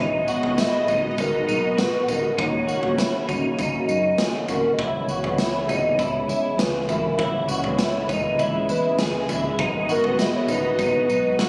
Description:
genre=dream pop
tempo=100 BPM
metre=4/4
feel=straight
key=C# dorian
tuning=A4 = 440 Hz
part: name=hollow clarinet-like synth lead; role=melody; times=0.0-11.5 s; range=A#4 to D#5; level=-27 LUFS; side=equal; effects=chorus, tape echo
part: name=lush unison pad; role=sustained chords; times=0.0-11.5 s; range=A#2 to D#5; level=-30 LUFS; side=equal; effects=chorus, phaser
part: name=clean electric guitar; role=arpeggios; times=0.0-11.5 s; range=D#4 to G#4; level=-29 LUFS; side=equal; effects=ensemble chorus, tape echo
part: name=vintage muted fingered electric bass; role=bass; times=0.0-11.5 s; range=G#1 to F#2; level=-34 LUFS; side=equal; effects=none
part: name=raw garage drum kit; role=drums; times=0.3-11.5 s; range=kick drum, snare drum, tambourine, toms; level=-29 LUFS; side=equal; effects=none
room=moderate lush hall reverb, RT60 2.6 s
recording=recorded on a phone in the room, club reverb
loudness=-22 LUFS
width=mono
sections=0.0-11.5 A section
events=none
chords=0.0 G#m7; 2.4 D#m7; 4.8 C#m7; 9.6 G#m7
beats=0.59 1.19 1.79 | 2.39 2.99 3.59 4.19 | 4.79 5.39 5.99 6.59 | 7.19 7.79 8.39 8.99 | 9.59 10.19 10.79 11.39

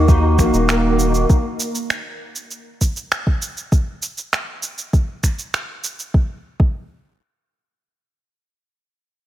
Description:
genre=folktronica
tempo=99 BPM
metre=4/4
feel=straight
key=Eb minor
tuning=A4 = 441 Hz
part: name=hand-pumped harmonium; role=sustained chords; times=0.0-1.3 s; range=Eb3 to Gb4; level=-24 LUFS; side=equal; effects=none
part: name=picked twelve-string acoustic guitar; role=arpeggios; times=0.0-1.9 s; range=Eb3 to Gb4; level=-20 LUFS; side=equal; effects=ensemble chorus, low-pass filter, digital delay
part: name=round analog bass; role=bass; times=0.0-1.3 s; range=Eb1 to Eb2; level=-17 LUFS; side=equal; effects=none
part: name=electronic kick drum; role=drums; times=0.1-6.8 s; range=none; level=-15 LUFS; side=equal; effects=studio reverb
part: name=electronic shaker and finger snaps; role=drums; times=0.1-6.1 s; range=none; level=-24 LUFS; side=right 2 dB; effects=studio reverb
room=light reverb, studio reverb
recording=none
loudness=-17 LUFS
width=side -13 dB against mid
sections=0.0-6.1 A section; 6.1-8.6 B section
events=filter sweep on twelve-string acoustic guitar 0.0-1.3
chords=0.0 Ebm; 1.3 N.C.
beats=0.08 0.69 | 1.29 1.90 2.50 3.11 | 3.72 4.32 4.93 5.54 | 6.14 6.75

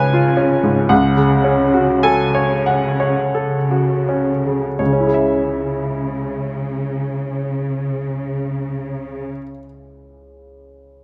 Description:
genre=classical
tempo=38-62 BPM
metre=3/4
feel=rubato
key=C# minor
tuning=A4 = 437 Hz
part: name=bright baby grand piano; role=melody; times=0.0-11.0 s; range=C#2 to A5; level=-19 LUFS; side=equal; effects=none
part: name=warm symphonic cello section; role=bass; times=0.0-9.3 s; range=C#3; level=-23 LUFS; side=equal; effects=none
room=moderate scoring stage reverb, RT60 1.6 s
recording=close, detailed microphones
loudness=-18 LUFS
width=mono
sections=0.0-4.8 A section; 4.8-8.8 B section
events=slowing down 0.0-4.8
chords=0.0 C#7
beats=| 0.90 2.04 3.34 | 4.79 6.09 7.42

